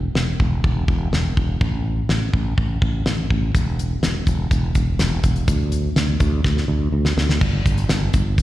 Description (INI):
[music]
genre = piano-driven pop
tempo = 124 BPM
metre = 4/4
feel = straight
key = unclear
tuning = A4 = 441 Hz
[part]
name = sustaining fretless electric bass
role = bass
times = 0.0-8.4 s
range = E1 to D2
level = -20 LUFS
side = equal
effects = none
[part]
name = damped 70s drum kit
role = drums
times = 0.2-8.4 s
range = crash cymbal, hi-hat, kick drum, snare drum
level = -20 LUFS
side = equal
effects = none
[sound]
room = little or no reverb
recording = live gig heard through the venue's PA, recital hall reverb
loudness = -18 LUFS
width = side -15 dB against mid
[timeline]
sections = 0.0-7.4 A section; 7.4-8.4 B section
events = drum fill 6.5-7.4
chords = none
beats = 0.16 0.64 1.13 | 1.61 2.10 2.58 3.06 | 3.55 4.03 4.52 5.00 | 5.48 5.97 6.45 6.94 | 7.42 7.90 8.39